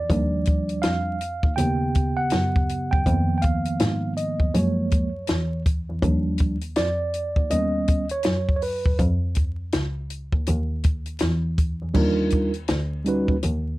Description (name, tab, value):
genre	hip hop, jazz-hop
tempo	81 BPM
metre	4/4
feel	swing 63% on 16ths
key	unclear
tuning	A4 = 439 Hz
part	mellow tine electric piano	accompaniment	0.0-13.4 s	Db3 to G5	-24 LUFS	right 1 dB	fast stereo tremolo
part	rich double bass	bass	0.0-13.8 s	Db2 to Ab2	-26 LUFS	equal	none
part	compact cocktail drum kit	drums	0.1-13.6 s	crash cymbal, hi-hat, kick drum, snare drum	-23 LUFS	equal	none
room	little or no reverb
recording	dark, warm production, vinyl crackle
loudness	-21 LUFS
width	side -18 dB against mid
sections	0.0-12.0 A section; 12.0-13.8 B section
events	tine electric piano solo 0.0-12.0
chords	0.1 Ebmaj9; 1.6 Eb7alt; 3.1 Abm69/F; 4.5 Gbmaj9; 6.0 Ebmaj9; 7.5 Eb7alt; 9.0 Db/F; 10.5 N.C.; 12.0 Ebmaj9